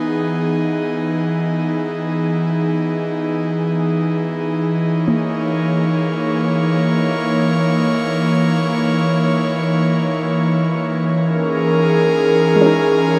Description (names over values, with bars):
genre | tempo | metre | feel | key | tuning
ambient | free time | none | none | unclear | A4 = 440 Hz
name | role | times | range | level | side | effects
airy breathy pad | sustained chords | 0.0-13.2 s | E3 to C#5 | -18 LUFS | equal | chorus
soft round pluck | arpeggios | 5.1-7.0, 12.6-13.2 s | G#3 to D#4 | -25 LUFS | equal | none
room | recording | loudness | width
moderate shimmer reverb, RT60 7.9 s | none | -18 LUFS | mono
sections
0.0-13.2 A section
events
fade-in on analog synth pad 0.0-13.2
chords
0.0 Emaj7; 4.4 C#m69/E